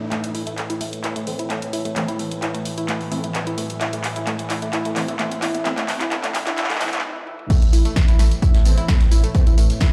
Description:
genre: driving peak-time techno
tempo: 130 BPM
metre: 4/4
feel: straight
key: A minor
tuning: A4 = 440 Hz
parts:
  - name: overtone-sweeping drone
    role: drone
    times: 0.0-9.9 s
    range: A2 to E3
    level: -33 LUFS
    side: equal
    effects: chorus, built-in reverb, sidechain pumping
  - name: riser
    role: sound effects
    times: 0.0-7.0 s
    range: none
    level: -41 LUFS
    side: equal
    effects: none
  - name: analog pluck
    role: riff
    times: 0.1-9.9 s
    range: A3 to E4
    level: -30 LUFS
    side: equal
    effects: chorus, overdrive, sidechain pumping, dub echo
  - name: punchy analog drum machine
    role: drums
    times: 0.1-9.9 s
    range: crash cymbal, handclaps, hi-hat, snare drum, tambourine, toms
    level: -28 LUFS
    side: equal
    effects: high-pass filter on snare, high-pass filter on hats, high-pass filter on toms, high-pass filter on perc, high-pass filter on cymbals, high-pass filter on room
  - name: rave stab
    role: stabs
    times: 1.3-9.4 s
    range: E3 to C4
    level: -34 LUFS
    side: equal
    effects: chorus, built-in reverb, sidechain pumping, dub echo
  - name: electronic kick drum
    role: drums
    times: 7.5-9.9 s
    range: none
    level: -18 LUFS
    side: equal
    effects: none
  - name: soft brush drum kit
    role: drums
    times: 7.5-9.9 s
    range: hi-hat, snare drum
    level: -42 LUFS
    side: equal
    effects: none
  - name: warm sub bass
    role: bass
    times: 7.6-9.7 s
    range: A1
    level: -18 LUFS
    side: equal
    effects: overdrive, sidechain pumping, low-pass filter
room: light reverb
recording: played on a big sound system in a bare room, stone room reverb, high-pass filter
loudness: -21 LUFS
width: mono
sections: 0.1-7.5 A section; 7.5-9.9 B section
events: build-up 0.1-7.5; drum fill 0.1-7.0, 7.2-7.5; filter sweep on synth arpeggio sound 0.1-7.5; filter sweep on synth stab 0.1-7.5; stop 7.0-7.5; drop 7.5-9.9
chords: 0.1 Am

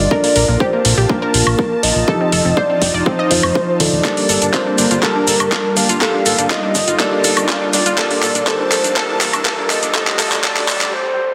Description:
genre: progressive house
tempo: 122 BPM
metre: 4/4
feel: straight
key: unclear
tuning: A4 = 440 Hz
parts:
  - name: soft octave-layered synth lead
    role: melody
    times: 0.0-11.3 s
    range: Bb4 to F5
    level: -22 LUFS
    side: equal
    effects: chorus, phaser, delay
  - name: supersaw pad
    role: sustained chords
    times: 0.0-10.9 s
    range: G3 to A5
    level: -26 LUFS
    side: equal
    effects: sidechain pumping
  - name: felt-muted upright piano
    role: stabs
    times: 0.0-10.9 s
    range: F3 to A5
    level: -24 LUFS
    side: equal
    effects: sidechain pumping, low-pass filter, delay
  - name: fat analog bass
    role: bass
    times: 0.0-10.9 s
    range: Eb1 to Bb1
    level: -24 LUFS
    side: equal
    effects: sidechain pumping
  - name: analog pluck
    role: arpeggios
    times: 0.1-10.9 s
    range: Bb3 to Eb5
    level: -24 LUFS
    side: equal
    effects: chorus, vintage 12-bit sampler grit, sidechain pumping, delay
  - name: electronic kick drum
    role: drums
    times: 0.1-10.8 s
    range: none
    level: -23 LUFS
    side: equal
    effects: high-pass filter on kick, small room reverb
  - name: pop drum kit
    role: drums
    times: 0.2-10.9 s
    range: handclaps, hi-hat, shaker, woodblock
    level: -20 LUFS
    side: equal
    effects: sidechain pumping on perc, small room reverb, sidechain pumping on hats
  - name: riser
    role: sound effects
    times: 6.1-10.9 s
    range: none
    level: -34 LUFS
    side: equal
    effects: none
room: moderate lush hall reverb, RT60 2.1 s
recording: dense, heavily limited modern master, high-pass filter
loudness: -15 LUFS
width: mono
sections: 0.0-11.3 A section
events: build-up 0.0-11.3; filter sweep on felt piano 0.0-11.3; filter sweep 0.0-11.3; drum fill 4.0-10.9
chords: 0.1 Bbmaj7; 2.1 F7; 4.0 Gmadd9; 6.0 Ebmaj7/G; 8.0 Bbmaj7; 9.9 F7

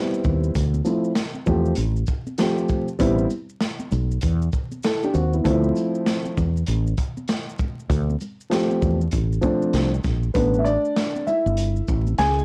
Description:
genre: hip hop, jazz-hop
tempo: 98 BPM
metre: 4/4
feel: swing 62% on 16ths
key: D dorian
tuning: A4 = 440 Hz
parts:
  - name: dark concert grand piano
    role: accompaniment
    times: 0.0-12.4 s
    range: E3 to G#5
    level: -24 LUFS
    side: equal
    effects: none
  - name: maracas and congas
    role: percussion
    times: 0.1-12.4 s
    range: none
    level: -39 LUFS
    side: equal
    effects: none
  - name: woody fretless electric bass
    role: bass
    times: 0.2-12.4 s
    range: G1 to E2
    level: -24 LUFS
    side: equal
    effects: tube saturation
  - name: crunchy breakbeat drum kit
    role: drums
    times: 0.2-12.4 s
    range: hi-hat, kick drum, shaker, snare drum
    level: -29 LUFS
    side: equal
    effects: none
room: little or no reverb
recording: dry, gritty hardware recording, vinyl crackle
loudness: -22 LUFS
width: mono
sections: 0.0-10.4 A section; 10.4-12.4 B section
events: grand piano solo 10.4-12.4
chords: 0.0 Am9 (rootless); 0.6 Dm9 (rootless); 3.0 Am9; 5.5 Dm9; 10.4 A9sus4

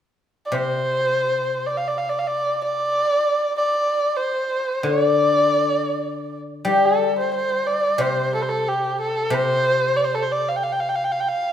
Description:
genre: chinese traditional, Chinese chamber ensemble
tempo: free time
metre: none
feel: none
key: unclear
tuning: A4 = 440 Hz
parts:
  - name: dark erhu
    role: melody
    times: 0.5-11.5 s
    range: G4 to G5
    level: -20 LUFS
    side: right 1 dB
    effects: none
  - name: guzheng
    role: accompaniment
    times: 0.5-11.3 s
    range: C3 to G3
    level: -24 LUFS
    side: left 3 dB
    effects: none
room: wet recital hall reverb, RT60 1.5 s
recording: none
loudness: -19 LUFS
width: side -9 dB against mid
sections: 0.1-6.7 A section; 6.7-11.5 B section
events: none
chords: none

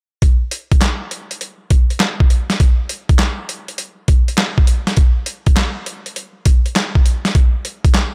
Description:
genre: R&B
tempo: 101 BPM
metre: 4/4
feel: swing 67% on 16ths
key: none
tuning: none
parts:
  - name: boom bap sampler-style drum kit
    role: drums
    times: 0.2-8.1 s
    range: handclaps, hi-hat, kick drum, snare drum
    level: -16 LUFS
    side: equal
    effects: none
room: little or no reverb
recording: none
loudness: -16 LUFS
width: mono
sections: 0.2-8.1 A section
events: none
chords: none

